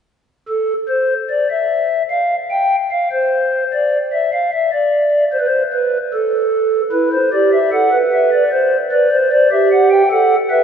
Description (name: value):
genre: classical, baroque-style 3-part fugue for pipe organ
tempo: 75 BPM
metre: 4/4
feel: straight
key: unclear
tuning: A4 = 440 Hz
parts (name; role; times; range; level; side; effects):
- pipe organ, stopped flute; solo; 0.5-10.6 s; E4 to G5; -13 LUFS; equal; none
room: wet church reverb, RT60 3.3 s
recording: nothing above 10.7 kHz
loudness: -13 LUFS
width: side -8 dB against mid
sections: 0.5-10.6 A section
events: none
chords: 0.5 N.C.; 6.9 Em; 8.5 Gsus4; 10.1 B7(no3)/A